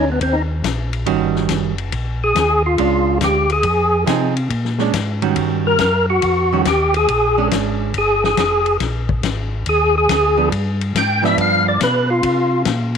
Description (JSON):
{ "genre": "soul jazz organ trio", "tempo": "140 BPM", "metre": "4/4", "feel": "swing 68% on 8ths", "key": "unclear", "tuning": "A4 = 441 Hz", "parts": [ { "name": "percussive tonewheel organ", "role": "melody", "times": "0.0-12.6 s", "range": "Cb4 to G5", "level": "-16 LUFS", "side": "equal", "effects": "slow rotary speaker, overdrive, chorus vibrato" }, { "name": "mellow tonewheel organ", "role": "bass", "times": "0.0-13.0 s", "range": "F1 to C3", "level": "-21 LUFS", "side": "equal", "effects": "chorus vibrato, slow rotary speaker" }, { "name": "warm soul drum kit", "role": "drums", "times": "0.2-13.0 s", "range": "hi-hat, kick drum, ride cymbal, snare drum", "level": "-24 LUFS", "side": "left 8 dB", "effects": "none" }, { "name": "hollow-body jazz guitar", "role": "accompaniment", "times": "1.1-11.8 s", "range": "Eb3 to Ab4", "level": "-21 LUFS", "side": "right 12 dB", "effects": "none" } ], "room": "moderate spring reverb, RT60 2.1 s", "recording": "1960s-style stereo with parts hard left and right", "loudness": "-15 LUFS", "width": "side -7 dB against mid", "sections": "0.0-13.0 A section", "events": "tonewheel organ solo 0.0-13.0", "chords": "0.2 Eb7#9; 1.9 Bb7#9; 3.6 Fm7; 4.5 Bb7#9; 5.4 Eb7#9; 7.1 Bb7#9; 10.5 G7; 12.2 C7(no3)" }